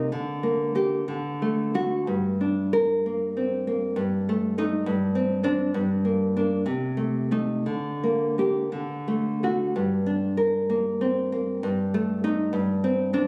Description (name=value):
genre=romantic piece for solo classical guitar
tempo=55-70 BPM (dotted quarters)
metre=6/8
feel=rubato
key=G minor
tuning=A4 = 436 Hz
part: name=nylon-string guitar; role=solo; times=0.0-13.3 s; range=G2 to Bb4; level=-25 LUFS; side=equal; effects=none
room=moderate recital hall reverb, RT60 1.4 s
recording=recorded on a phone in the room, club reverb, compression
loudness=-25 LUFS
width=mono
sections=0.0-9.8 A section; 9.8-13.3 A section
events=none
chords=0.1 Gm/D; 1.1 D; 2.1 Gm; 4.0 Gsus2; 4.9 Gsus4; 5.7 Gm; 6.6 Adim/C; 7.6 Gm/D; 8.7 D; 9.8 Gm; 11.6 Gsus2; 12.5 Gsus4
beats=| 0.10 1.09 | 2.09 3.06 | 3.97 4.85 | 5.73 6.64 | 7.65 8.73 | 9.76 10.70 | 11.64 12.53